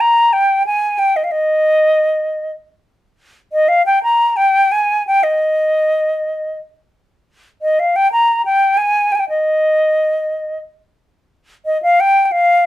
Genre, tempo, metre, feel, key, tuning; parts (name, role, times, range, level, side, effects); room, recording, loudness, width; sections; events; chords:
klezmer; 89 BPM; 3/4; straight; A4 = 440 Hz
concert flute; solo; 0.0-12.7 s; Eb5 to Bb5; -12 LUFS; equal
moderate studio reverb, RT60 0.5 s; -12 LUFS; side -14 dB against mid
0.0-12.7 A section